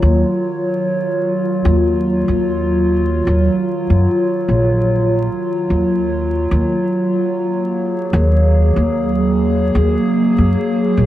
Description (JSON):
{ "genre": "ambient dub", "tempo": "74 BPM", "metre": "4/4", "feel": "swing 56% on 16ths", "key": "Eb minor", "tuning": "A4 = 440 Hz", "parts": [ { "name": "warbly tape-like pad", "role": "sustained chords", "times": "0.0-11.1 s", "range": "Eb3 to Db5", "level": "-16 LUFS", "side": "equal", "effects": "chorus, built-in reverb, phaser, cassette tape" }, { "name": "upright bass", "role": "bass", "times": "0.0-11.1 s", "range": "Bb1 to Gb2", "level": "-15 LUFS", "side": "equal", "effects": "none" } ], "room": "light reverb, small room ambience", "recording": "home recording on cassette, vinyl crackle", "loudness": "-14 LUFS", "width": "side -13 dB against mid", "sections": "0.0-11.1 A section", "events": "none", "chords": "0.0 Ebm9" }